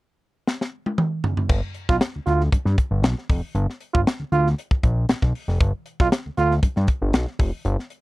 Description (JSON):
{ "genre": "funk", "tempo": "117 BPM", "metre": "4/4", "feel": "straight", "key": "G mixolydian", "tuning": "A4 = 439 Hz", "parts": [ { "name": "crisp fusion drum kit", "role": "drums", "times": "0.5-8.0 s", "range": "crash cymbal, hi-hat, kick drum, snare drum, toms", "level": "-21 LUFS", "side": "equal", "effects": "none" }, { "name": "fat analog bass", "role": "bass", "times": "1.5-7.8 s", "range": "F1 to G2", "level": "-21 LUFS", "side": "equal", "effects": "none" }, { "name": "clear trombone", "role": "second line", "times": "1.9-6.5 s", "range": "F4", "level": "-20 LUFS", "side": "right 5 dB", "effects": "none" } ], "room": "little or no reverb", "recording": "dry, close 1970s-style studio recording", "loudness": "-20 LUFS", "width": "side -20 dB against mid", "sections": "0.0-1.5 A section; 1.5-8.0 B section", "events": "drum fill 0.5-1.5", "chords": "0.0 N.C.; 1.5 G7" }